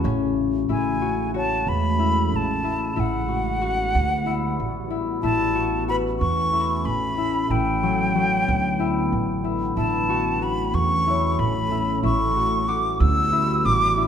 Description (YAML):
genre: contemporary instrumental, chamber music in an uneven meter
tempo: 185 BPM (eighths)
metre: 7/8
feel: straight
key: A major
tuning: A4 = 440 Hz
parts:
  - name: jazz flute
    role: melody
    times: 0.0-14.0 s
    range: F#5 to E6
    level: -24 LUFS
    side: equal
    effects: none
  - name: deep dark ambient pad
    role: sustained chords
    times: 0.0-14.1 s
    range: C#3 to G5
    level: -30 LUFS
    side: right 1 dB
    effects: chorus, built-in reverb
  - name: concert harp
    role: arpeggios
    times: 0.0-14.1 s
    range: F#3 to F#4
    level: -26 LUFS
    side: left 7 dB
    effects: none
  - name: upright bass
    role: bass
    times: 0.0-14.1 s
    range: A1 to E2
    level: -25 LUFS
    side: right 3 dB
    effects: none
  - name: celesta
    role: texture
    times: 1.4-2.5, 5.9-7.0, 11.1-14.1 s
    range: C#4 to C#5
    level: -33 LUFS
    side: left 5 dB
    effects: none
room: moderate recital hall reverb, RT60 1.5 s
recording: minimal, uncompressed stereo recording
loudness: -20 LUFS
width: side -8 dB against mid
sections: 0.7-14.1 A section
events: none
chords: 0.0 A6; 0.7 Amaj7; 3.0 Gmaj7/A; 5.2 A; 7.5 Gmaj7/A; 9.8 A; 12.0 Gmaj7/A